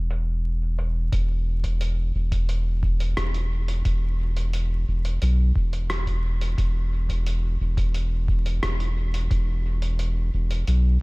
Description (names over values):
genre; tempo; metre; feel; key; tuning
ambient dub; 88 BPM; 4/4; straight; unclear; A4 = 439 Hz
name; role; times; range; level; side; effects
soft dub sub bass; bass; 0.0-11.0 s; E1 to B1; -22 LUFS; equal; none
lo-fi sampler-style drum kit; drums; 0.1-10.8 s; hi-hat, rim click; -35 LUFS; equal; low-pass filter on hats, low-pass filter on snare, low-pass filter on room, dub echo
electronic kick drum; drums; 1.1-9.4 s; none; -27 LUFS; equal; overdrive
room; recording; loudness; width
little or no reverb; vinyl crackle; -22 LUFS; side -27 dB against mid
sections
0.0-1.1 A section; 1.1-11.0 B section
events
none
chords
none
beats
0.45 | 1.13 1.81 2.49 3.17 | 3.85 4.54 5.22 5.90 | 6.58 7.26 7.95 8.63 | 9.31 9.99 10.67